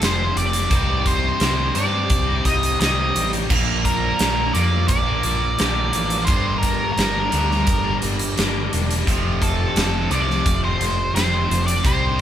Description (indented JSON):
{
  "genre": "classic rock",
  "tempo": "86 BPM",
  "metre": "4/4",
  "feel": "straight",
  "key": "unclear",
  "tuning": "A4 = 440 Hz",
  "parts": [
    { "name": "octave-fuzz lead guitar", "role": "melody", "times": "0.0-12.2 s", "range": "A4 to Eb5", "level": "-23 LUFS", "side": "equal", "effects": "distortion" },
    { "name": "tonewheel organ", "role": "sustained chords", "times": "0.0-12.2 s", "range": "D4 to C5", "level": "-36 LUFS", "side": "right 1 dB", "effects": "none" },
    { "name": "overdriven semi-hollow guitar", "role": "riff", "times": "0.0-12.2 s", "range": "F2 to Eb4", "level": "-28 LUFS", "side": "left 6 dB", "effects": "none" },
    { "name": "raw garage guitar", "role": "riff", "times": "0.0-12.2 s", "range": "F2 to C4", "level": "-26 LUFS", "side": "right 4 dB", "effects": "overdrive" },
    { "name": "growling picked electric bass", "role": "bass", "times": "0.0-12.2 s", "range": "E1 to G2", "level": "-23 LUFS", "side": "equal", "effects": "overdrive" },
    { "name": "huge arena drum kit", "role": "drums", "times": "0.0-12.0 s", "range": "crash cymbal, hi-hat, kick drum, snare drum", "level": "-22 LUFS", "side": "equal", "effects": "none" }
  ],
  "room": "moderate stone room reverb, RT60 1.0 s",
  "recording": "band playing live in one room",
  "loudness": "-17 LUFS",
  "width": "side -10 dB against mid",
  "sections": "0.0-12.2 A section",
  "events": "none",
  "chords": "0.0 F; 0.7 Cm; 3.5 Bb; 6.3 Gm; 9.1 F",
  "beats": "0.01 | 0.71 1.41 2.10 2.80 | 3.50 4.20 4.90 5.59 | 6.29 6.99 7.68 8.38 | 9.07 9.76 10.46 11.15 | 11.84"
}